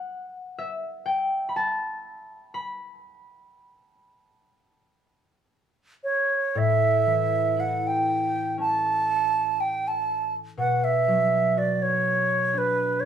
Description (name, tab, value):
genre	celtic folk, Celtic slow air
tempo	60 BPM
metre	4/4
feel	rubato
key	A mixolydian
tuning	A4 = 437 Hz
part	concert harp	accompaniment	0.0-13.1 s	A2 to B5	-28 LUFS	left 3 dB	none
part	bright baroque flute	melody	6.0-13.1 s	B4 to A5	-22 LUFS	right 3 dB	none
room	wet studio ambience, RT60 0.5 s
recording	band playing live in one room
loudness	-22 LUFS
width	side -8 dB against mid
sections	0.0-6.6 A section; 6.6-13.1 B section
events	harp solo 0.0-6.6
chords	0.0 N.C.; 6.6 A; 10.6 Bm